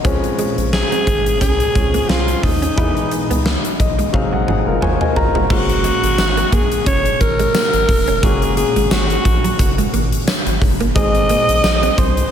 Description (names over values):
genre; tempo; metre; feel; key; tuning
1980s-style pop; 88 BPM; 4/4; swing 55% on 16ths; unclear; A4 = 439 Hz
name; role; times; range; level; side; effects
clear baby grand piano; accompaniment; 0.0-12.3 s; E3 to Bb5; -23 LUFS; left 4 dB; slapback echo
rubbery square bass; bass; 0.0-12.2 s; Fb1 to E2; -21 LUFS; equal; none
huge arena drum kit; drums; 0.0-12.3 s; crash cymbal, hi-hat, kick drum, snare drum, toms; -18 LUFS; equal; none
direct-recorded clean electric guitar; riff; 0.1-12.1 s; F3 to E4; -25 LUFS; right 5 dB; ensemble chorus, tape echo, slapback echo
growling alto saxophone; melody; 0.7-12.3 s; Eb4 to Eb5; -18 LUFS; equal; slapback echo
tambourine; percussion; 6.2-11.8 s; none; -35 LUFS; left 6 dB; none
room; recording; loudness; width
moderate concert hall reverb, RT60 2.1 s; big arena sound; -14 LUFS; side -9 dB against mid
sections
0.0-5.5 A section; 5.5-12.3 B section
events
grand piano fill 3.5-5.5; drum fill 4.1-5.5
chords
0.0 Dbmaj7; 2.8 Emaj7; 4.1 Ab7; 5.5 Gbadd9; 11.0 Ab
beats
| 0.05 0.73 1.41 2.09 | 2.77 3.46 4.14 4.82 | 5.50 6.18 6.87 7.55 | 8.23 8.91 9.59 10.28 | 10.96 11.64